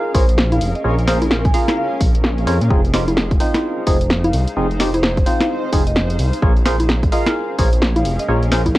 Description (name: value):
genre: UK garage, two-step garage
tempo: 129 BPM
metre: 4/4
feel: swing 61% on 16ths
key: unclear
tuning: A4 = 436 Hz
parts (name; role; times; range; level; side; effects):
- percussive organ stab; stabs; 0.0-8.6 s; C4 to F5; -22 LUFS; equal; wide subtle chorus, cassette tape, tape echo
- granular cloud pad; texture; 0.0-8.8 s; Db4 to F5; -28 LUFS; equal; built-in reverb, sidechain pumping, cassette tape
- marimba with soft mallets; melody; 0.1-8.3 s; C5 to Ab5; -26 LUFS; right 1 dB; cassette tape
- dark detuned saw bass; bass; 0.1-8.8 s; F1 to Bb2; -18 LUFS; equal; none
- electronic kick drum; drums; 0.1-8.7 s; none; -17 LUFS; equal; overdrive, cassette tape
- punchy analog drum machine; drums; 0.1-8.8 s; congas, hi-hat, snare drum; -19 LUFS; equal; overdrive, cassette tape
room: light reverb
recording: home recording on cassette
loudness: -14 LUFS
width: side -17 dB against mid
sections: 0.0-8.8 A section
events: none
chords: 0.0 Bbm7; 2.7 Fm7; 6.4 Bbm7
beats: 0.38 | 0.84 1.31 1.77 2.24 | 2.70 3.17 3.63 4.10 | 4.56 5.03 5.49 5.96 | 6.42 6.89 7.35 7.82 | 8.28 8.75